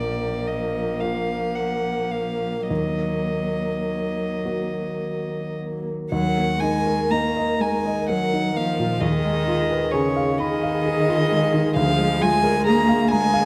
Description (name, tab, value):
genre	classical, slow romantic movement for piano quartet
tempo	34-45 BPM (dotted quarters)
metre	6/8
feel	rubato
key	Eb minor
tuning	A4 = 440 Hz
part	warm violin	melody	0.0-13.5 s	Db5 to Bb5	-28 LUFS	equal	none
part	warm cello	second line	0.0-13.5 s	Db3 to Bb3	-28 LUFS	equal	none
part	dark viola	accompaniment	0.0-13.5 s	Bb3 to Bb4	-31 LUFS	equal	none
part	warm concert grand piano	accompaniment	0.0-13.5 s	Bb1 to Cb6	-27 LUFS	equal	none
room	moderate recital hall reverb, RT60 1.4 s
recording	close, detailed microphones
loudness	-22 LUFS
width	mono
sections	0.0-6.1 A section; 6.1-13.5 B section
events	none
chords	0.0 Bb5; 2.7 Ebm; 6.1 Eb5; 9.0 Fm7b5/Eb; 11.8 Bb7/D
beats	1.01 | 2.70 4.44 | 6.11 7.61 | 9.01 10.39 | 11.78 13.13